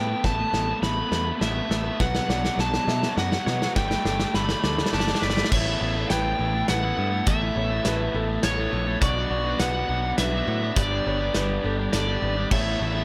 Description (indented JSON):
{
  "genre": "post-rock",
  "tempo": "103 BPM",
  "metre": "3/4",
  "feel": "straight",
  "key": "A mixolydian",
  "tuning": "A4 = 440 Hz",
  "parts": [
    { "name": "overdriven slide guitar", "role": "melody", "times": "0.0-13.0 s", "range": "C#5 to B5", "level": "-30 LUFS", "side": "equal", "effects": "slapback echo" },
    { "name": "felt-muted upright piano", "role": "arpeggios", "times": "0.0-13.0 s", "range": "A4 to C#6", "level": "-38 LUFS", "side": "equal", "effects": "slapback echo" },
    { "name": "twangy electric guitar", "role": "arpeggios", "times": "0.0-5.5 s", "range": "B2 to C#5", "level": "-39 LUFS", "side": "equal", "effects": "none" },
    { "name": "crunchy overdriven guitar", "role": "riff", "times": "0.0-13.0 s", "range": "B2 to A4", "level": "-34 LUFS", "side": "equal", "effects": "none" },
    { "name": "crunchy overdriven guitar", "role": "riff", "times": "0.0-13.0 s", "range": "B2 to A4", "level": "-34 LUFS", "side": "equal", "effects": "none" },
    { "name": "picked electric bass", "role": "bass", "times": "0.0-13.0 s", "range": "G1 to B2", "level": "-31 LUFS", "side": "equal", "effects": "none" },
    { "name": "loose indie drum kit", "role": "drums", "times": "0.2-12.6 s", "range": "crash cymbal, hi-hat, kick drum, snare drum", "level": "-29 LUFS", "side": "equal", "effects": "none" }
  ],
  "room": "light reverb",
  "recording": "none",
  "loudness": "-24 LUFS",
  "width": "mono",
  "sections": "0.0-5.5 A section; 5.5-13.0 B section",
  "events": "build-up 0.0-5.5; drum fill 0.0-5.5",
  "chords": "0.0 Asus2; 2.0 Bmadd9; 3.8 Gadd9; 5.5 Asus2; 9.0 Bmadd9; 10.8 Gadd9; 12.5 Asus2"
}